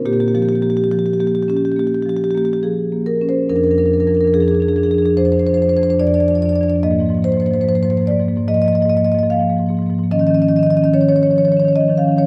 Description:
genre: classical, contemporary piece for solo marimba.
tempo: 72 BPM.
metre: 4/4.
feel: rubato.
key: F dorian.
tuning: A4 = 439 Hz.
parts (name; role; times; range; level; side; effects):
marimba with soft mallets; solo; 0.0-12.3 s; F2 to F5; -16 LUFS; equal; none.
room: wet recital hall reverb, RT60 1.3 s.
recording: none.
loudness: -16 LUFS.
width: mono.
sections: 0.0-3.5 A section; 3.5-12.3 B section.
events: none.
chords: 0.1 Bbm6; 3.5 Fm6; 6.8 Ab69; 10.1 Ebsus2.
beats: | 0.05 0.90 1.76 2.63 | 3.49 4.33 5.17 6.00 | 6.83 7.66 8.49 9.30 | 10.12 10.94 11.77.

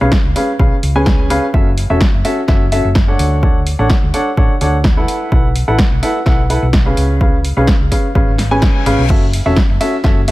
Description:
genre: piano house.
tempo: 127 BPM.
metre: 4/4.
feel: straight.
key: F# minor.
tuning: A4 = 438 Hz.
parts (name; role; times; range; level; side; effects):
warm upright piano; riff; 0.0-10.3 s; C#4 to G#5; -17 LUFS; equal; sidechain pumping, dub echo.
hollow-body short-scale fingered electric bass; bass; 0.0-10.3 s; E1 to D2; -16 LUFS; equal; sidechain pumping.
electronic kick drum; drums; 0.1-10.1 s; none; -13 LUFS; equal; overdrive.
punchy analog drum machine; drums; 0.1-10.3 s; crash cymbal, hi-hat, ride cymbal, snare drum; -21 LUFS; equal; overdrive.
reverse cymbal; sound effects; 8.4-9.1 s; none; -28 LUFS; left 7 dB; none.
room: little or no reverb.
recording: none.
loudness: -11 LUFS.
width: side -18 dB against mid.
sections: 0.0-10.3 A section.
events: reverse cymbal 8.4-9.1.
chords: 0.0 C#7; 1.5 F#m7; 3.2 Dmaj7; 5.1 B7sus4; 7.0 C#7; 9.1 F#m7.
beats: 0.12 0.59 1.07 | 1.54 2.01 2.48 2.96 | 3.43 3.90 4.37 4.85 | 5.32 5.79 6.26 6.74 | 7.21 7.68 8.15 8.63 | 9.10 9.57 10.04.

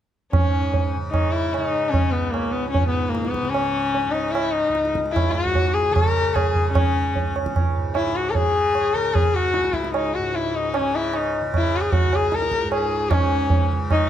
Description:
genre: indian classical, Hindustani.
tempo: 150 BPM.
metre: 4/4.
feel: straight.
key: C# raga kafi.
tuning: A4 = 438 Hz.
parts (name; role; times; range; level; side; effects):
rich sarangi; melody; 0.3-14.1 s; A#3 to A#4; -22 LUFS; left 4 dB; none.
tanpura; drone; 0.3-14.1 s; C#2 to C#3; -29 LUFS; equal; none.
tabla; percussion; 0.3-14.0 s; none; -22 LUFS; right 3 dB; none.
room: light reverb.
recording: close, detailed microphones.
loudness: -19 LUFS.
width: side -10 dB against mid.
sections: 0.3-13.1 A section.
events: none.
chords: none.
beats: | 0.33 0.73 1.13 1.53 | 1.94 2.34 2.74 3.14 | 3.54 3.95 4.35 4.75 | 5.15 5.55 5.95 6.35 | 6.75 7.15 7.55 7.95 | 8.35 8.75 9.14 9.54 | 9.94 10.34 10.73 11.13 | 11.53 11.92 12.32 12.71 | 13.11 13.50 13.89.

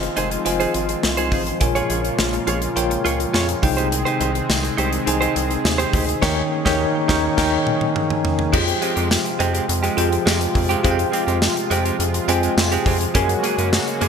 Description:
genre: 1980s-style pop.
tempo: 104 BPM.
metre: 4/4.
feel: straight.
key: unclear.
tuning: A4 = 439 Hz.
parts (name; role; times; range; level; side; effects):
bell-like tine electric piano; accompaniment; 0.0-14.1 s; Bb2 to Ab5; -22 LUFS; left 1 dB; fast stereo tremolo.
warm analog pad; sustained chords; 0.0-14.1 s; C3 to Ab4; -26 LUFS; left 1 dB; chorus, tremolo.
direct-recorded clean electric guitar; riff; 0.0-14.1 s; Ab3 to Db5; -25 LUFS; right 5 dB; analog chorus, digital delay.
rubbery square bass; bass; 0.0-14.1 s; F1 to Gb2; -24 LUFS; equal; none.
modern studio drum kit; drums; 0.0-14.1 s; crash cymbal, hi-hat, kick drum, snare drum, tambourine, toms; -23 LUFS; left 1 dB; none.
room: moderate plate reverb, RT60 2.7 s.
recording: bright 1980s-style digital production.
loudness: -17 LUFS.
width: side -6 dB against mid.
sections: 0.0-8.5 A section; 8.5-14.1 B section.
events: band accent 6.2-8.5; drum fill 7.4-8.5.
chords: 0.0 Fm7; 1.6 Bbm7; 3.6 Abmaj7/C; 6.2 Eb7; 8.5 Fmadd9; 13.2 Gbadd9.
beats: 0.46 1.03 | 1.61 2.19 2.77 3.34 | 3.92 4.50 5.07 5.65 | 6.23 6.80 7.38 7.96 | 8.54 9.11 9.69 10.27 | 10.84 11.42 12.00 12.57 | 13.15 13.73.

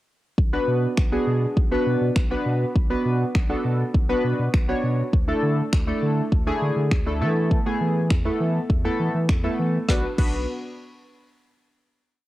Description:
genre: dance-pop.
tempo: 101 BPM.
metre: 4/4.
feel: straight.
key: B dorian.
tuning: A4 = 440 Hz.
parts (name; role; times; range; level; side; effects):
saturated sub bass; bass; 0.4-10.5 s; B1 to E3; -25 LUFS; equal; sidechain pumping.
deep house drum kit; drums; 0.4-10.3 s; crash cymbal, finger snaps, kick drum, snare drum; -21 LUFS; equal; cassette tape.
chorused retro synth keys; accompaniment; 0.5-10.5 s; A3 to C#5; -24 LUFS; equal; sidechain pumping, cassette tape.
room: light reverb.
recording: home recording on cassette.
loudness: -20 LUFS.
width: side -16 dB against mid.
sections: 0.4-9.9 verse; 9.9-12.3 final chord.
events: none.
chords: 0.4 Bm; 5.1 Dsus2; 7.2 Esus4; 9.9 Bm.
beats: | 0.38 0.97 1.57 2.16 | 2.76 3.35 3.94 4.54 | 5.13 5.73 6.32 6.92 | 7.51 8.10 8.70 9.29 | 9.89.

